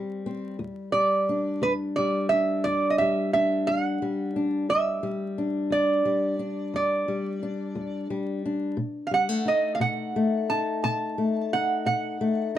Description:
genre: acoustic country blues, solo or duo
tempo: 59 BPM (dotted quarters)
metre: 12/8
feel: straight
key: E minor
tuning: A4 = 439 Hz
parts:
  - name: fingerpicked steel-string acoustic guitar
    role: accompaniment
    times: 0.0-12.6 s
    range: E2 to D#4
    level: -27 LUFS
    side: left 3 dB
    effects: none
  - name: lap resonator guitar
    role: melody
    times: 0.9-12.5 s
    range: B4 to A5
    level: -24 LUFS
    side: right 3 dB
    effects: none
room: moderate small room reverb, RT60 0.5 s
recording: dark, warm production, vinyl crackle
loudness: -23 LUFS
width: side -12 dB against mid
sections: 0.0-12.6 A section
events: none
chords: 0.0 Am7; 0.6 Em7; 8.8 B7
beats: | 0.59 1.62 2.64 3.67 | 4.69 5.71 6.74 7.76 | 8.78 9.81 10.83 11.85

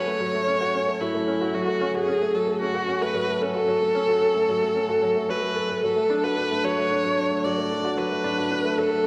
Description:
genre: electronica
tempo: 112 BPM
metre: 4/4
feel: straight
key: unclear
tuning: A4 = 440 Hz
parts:
  - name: dark viola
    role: melody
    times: 0.0-9.1 s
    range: E4 to D5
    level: -26 LUFS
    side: equal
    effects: none
  - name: felt-muted upright piano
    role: riff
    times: 0.0-9.1 s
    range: F#3 to A4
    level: -28 LUFS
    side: equal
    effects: tape echo
room: wet recital hall reverb, RT60 1.7 s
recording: none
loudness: -24 LUFS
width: mono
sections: 0.0-9.1 A section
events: none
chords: 0.0 F#m; 5.8 D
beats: 0.47 1.00 | 1.54 2.08 2.61 3.15 | 3.68 4.22 4.75 5.29 | 5.83 6.36 6.90 7.43 | 7.97 8.51 9.04

